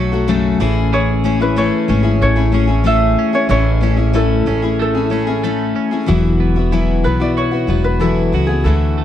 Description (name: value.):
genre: acoustic pop.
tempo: 93 BPM.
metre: 4/4.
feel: straight.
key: A major.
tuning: A4 = 441 Hz.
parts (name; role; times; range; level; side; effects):
concert harp; melody; 0.0-9.0 s; G#4 to F#5; -21 LUFS; right 1 dB; none.
picked steel-string acoustic guitar; accompaniment; 0.0-9.0 s; F#2 to A4; -17 LUFS; left 6 dB; none.
twelve-string electric guitar; arpeggios; 0.0-9.0 s; E3 to G#4; -23 LUFS; right 11 dB; none.
upright bass; bass; 0.0-9.0 s; E1 to D2; -17 LUFS; equal; none.
room: little or no reverb.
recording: dry, close 1970s-style studio recording.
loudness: -13 LUFS.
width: side -10 dB against mid.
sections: 0.0-6.1 A section; 6.1-9.0 B section.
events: none.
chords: 0.0 F#m; 0.6 Amaj7; 6.1 Esus2.